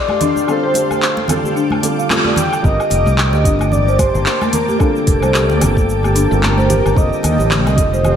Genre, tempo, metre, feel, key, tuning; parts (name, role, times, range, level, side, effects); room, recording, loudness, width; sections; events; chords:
organic downtempo; 111 BPM; 4/4; swing 57% on 16ths; G minor; A4 = 441 Hz
breathy flute-like synth lead; melody; 0.0-8.2 s; A4 to G5; -20 LUFS; equal; analog chorus, cassette tape, diffuse ambient delay
felt-muted upright piano; accompaniment; 0.0-8.2 s; D3 to C5; -23 LUFS; right 2 dB; sidechain pumping, diffuse ambient delay
granular cloud pad; sustained chords; 0.0-8.2 s; Bb3 to D6; -23 LUFS; equal; built-in reverb, sidechain pumping
folk marimba with soft mallets; arpeggios; 0.1-8.2 s; D3 to F5; -20 LUFS; left 3 dB; diffuse ambient delay
organic electronic drum kit; drums; 0.1-8.2 s; cabasa, handclaps, hi-hat, woodblock; -21 LUFS; left 1 dB
congas; percussion; 0.1-8.2 s; -23 LUFS; right 3 dB
fretless electric bass; bass; 2.6-8.2 s; F1 to Eb2; -16 LUFS; equal; analog chorus, sidechain pumping
electronic kick drum; drums; 2.6-7.9 s; -16 LUFS; equal
moderate plate reverb, RT60 2.0 s, digital ambience; dreamy mix soaked in reverb; -12 LUFS; side -8 dB against mid
0.0-2.6 A section; 2.6-8.2 A section
band accent 2.1
0.0 Fadd9; 2.6 Gmadd9; 7.0 Fadd9